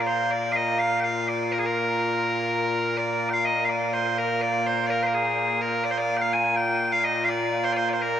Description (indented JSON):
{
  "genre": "scottish traditional, Scottish pipe music",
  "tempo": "83 BPM (dotted quarters)",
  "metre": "6/8",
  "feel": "straight",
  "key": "Bb mixolydian",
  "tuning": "A4 = 440 Hz",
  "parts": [
    { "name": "loud bright bagpipes", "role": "solo", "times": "0.0-8.2 s", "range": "Bb2 to Ab5", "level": "-22 LUFS", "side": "equal", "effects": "none" }
  ],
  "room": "wet huge ambient reverb, RT60 7.9 s",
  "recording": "heard from further back in the room",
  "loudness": "-22 LUFS",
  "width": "side -10 dB against mid",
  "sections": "0.0-3.0 A section; 3.0-8.2 B section",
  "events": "none",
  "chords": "none"
}